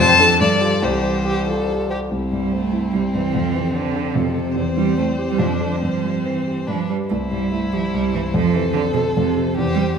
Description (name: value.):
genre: quick classical-period movement for piano quartet.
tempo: 145 BPM.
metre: 3/4.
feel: rubato.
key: C major.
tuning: A4 = 439 Hz.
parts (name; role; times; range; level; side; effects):
rich violin; melody; 0.0-10.0 s; E4 to A5; -22 LUFS; left 3 dB; none.
rich cello; second line; 0.0-10.0 s; B2 to A3; -23 LUFS; right 7 dB; none.
rich violin; second line; 0.0-10.0 s; C4 to C5; -25 LUFS; left 1 dB; none.
warm concert grand piano; accompaniment; 0.0-10.0 s; C2 to D5; -21 LUFS; left 1 dB; none.
room: wet recital hall reverb, RT60 1.7 s.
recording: minimal, uncompressed stereo recording.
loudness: -17 LUFS.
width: side -6 dB against mid.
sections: 0.0-2.1 A section; 2.1-10.0 A section.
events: none.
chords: 0.4 G5; 0.8 C; 3.3 F; 4.6 C/E; 5.4 Dm7/F; 5.8 C/G; 6.7 G; 7.1 C; 8.3 F; 9.6 C/E.